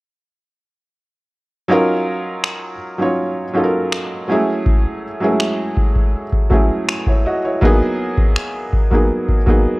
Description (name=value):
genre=contemporary R&B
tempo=81 BPM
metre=4/4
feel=straight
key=Eb phrygian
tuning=A4 = 439 Hz
part: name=felt-muted upright piano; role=accompaniment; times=1.7-9.8 s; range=Gb3 to Eb5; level=-17 LUFS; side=right 1 dB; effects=none
part: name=booming analog drum machine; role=drums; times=2.4-9.7 s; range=finger snaps, kick drum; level=-15 LUFS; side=equal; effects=none
room=little or no reverb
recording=worn, warbling old tape, cassette tape, warbly pitch drift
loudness=-15 LUFS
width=side -22 dB against mid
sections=1.7-9.8 A section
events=none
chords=1.7 Ebm9; 4.3 Gbm9; 7.6 Abm9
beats=| 1.70 2.44 3.18 3.92 | 4.66 5.40 6.14 6.88 | 7.62 8.36 9.10